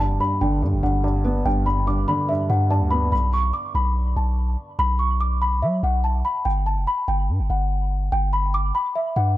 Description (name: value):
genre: hip hop, drill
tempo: 144 BPM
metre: 4/4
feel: half-time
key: unclear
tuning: A4 = 440 Hz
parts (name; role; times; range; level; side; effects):
- small celesta; melody; 0.0-9.3 s; E5 to D6; -24 LUFS; left 1 dB; tape echo
- felt-muted upright piano; accompaniment; 0.0-3.1 s; G2 to B3; -24 LUFS; right 1 dB; none
- long sustained 808-style bass; bass; 0.0-9.4 s; F#1 to F#3; -22 LUFS; equal; none
room: small room ambience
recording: dry, gritty hardware recording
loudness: -19 LUFS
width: side -15 dB against mid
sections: 0.0-9.4 A section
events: none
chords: 0.0 G; 3.1 B5; 6.5 G5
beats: 0.20 0.62 1.04 | 1.46 1.87 2.29 2.71 | 3.12 3.54 3.96 4.37 | 4.79 5.21 5.62 6.04 | 6.46 6.87 7.29 7.71 | 8.12 8.54 8.96 9.37